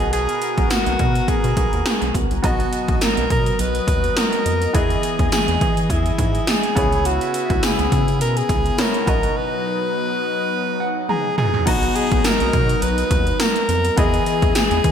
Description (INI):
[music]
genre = 1980s-style pop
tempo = 104 BPM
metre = 4/4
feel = swing 55% on 16ths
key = B major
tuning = A4 = 439 Hz
[part]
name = clear alto saxophone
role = melody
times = 0.0-14.9 s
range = E4 to B4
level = -22 LUFS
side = equal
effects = ping-pong delay
[part]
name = clear concert grand piano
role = accompaniment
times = 0.0-14.9 s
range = B2 to A#5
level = -27 LUFS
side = equal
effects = none
[part]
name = lush unison pad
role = sustained chords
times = 0.0-14.9 s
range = C#3 to D#5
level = -26 LUFS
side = left 1 dB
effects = chorus
[part]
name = rubbery square bass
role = bass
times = 0.0-14.9 s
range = B1 to E3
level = -22 LUFS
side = equal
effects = none
[part]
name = 80s electronic pad drums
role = drums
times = 0.0-14.9 s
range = crash cymbal, hi-hat, kick drum, snare drum, tambourine, toms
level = -20 LUFS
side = equal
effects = gated reverb on snare and toms, gated reverb
[part]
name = tambourine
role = percussion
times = 0.7-14.7 s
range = none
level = -35 LUFS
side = left 10 dB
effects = none
[sound]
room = moderate lush hall reverb, RT60 1.9 s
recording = bright 1980s-style digital production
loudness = -16 LUFS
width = side -8 dB against mid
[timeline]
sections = 0.0-11.7 A section; 11.7-14.9 A section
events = break 9.4-11.7; grand piano fill 10.5-11.7; drum fill 11.1-11.7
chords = 0.0 G#m7/B; 2.4 Bmaj7; 4.7 Emaj7; 6.8 C#m7; 9.1 Bmaj7; 14.0 Emaj7